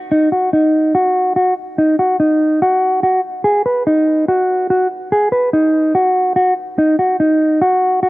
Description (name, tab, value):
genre	hip hop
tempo	144 BPM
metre	4/4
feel	half-time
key	unclear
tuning	A4 = 440 Hz
part	mellow electric guitar	solo	0.1-8.1 s	D#4 to B4	-12 LUFS	equal	low-pass filter
room	light reverb, digital ambience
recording	worn, warbling old tape, cassette tape, warbly pitch drift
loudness	-12 LUFS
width	side -20 dB against mid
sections	0.1-8.1 A section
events	none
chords	none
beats	| 0.12 0.53 0.95 1.36 | 1.78 2.20 2.62 3.03 | 3.45 3.87 4.28 4.70 | 5.12 5.53 5.95 6.37 | 6.78 7.20 7.62 8.03